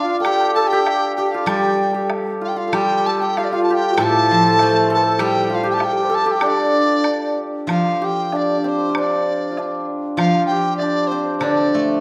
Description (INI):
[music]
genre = chinese traditional, Chinese chamber ensemble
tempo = 97 BPM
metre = 2/4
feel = rubato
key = unclear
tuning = A4 = 440 Hz
[part]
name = mellow large dizi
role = melody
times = 0.0-12.0 s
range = C5 to A5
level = -22 LUFS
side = equal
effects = none
[part]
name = hammered dulcimer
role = second line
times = 0.0-12.0 s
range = C4 to C5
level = -22 LUFS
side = equal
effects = none
[part]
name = xiao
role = second line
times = 0.0-7.4 s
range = D4 to C5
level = -27 LUFS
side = equal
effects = none
[part]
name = woodblock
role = percussion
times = 0.2-11.6 s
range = none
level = -31 LUFS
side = equal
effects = none
[part]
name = steel-string zither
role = accompaniment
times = 1.5-12.0 s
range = A2 to A3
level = -26 LUFS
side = equal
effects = none
[sound]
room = wet recital hall reverb, RT60 1.3 s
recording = none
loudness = -18 LUFS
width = mono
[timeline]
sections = 0.0-7.7 A section; 7.7-12.0 B section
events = none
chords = none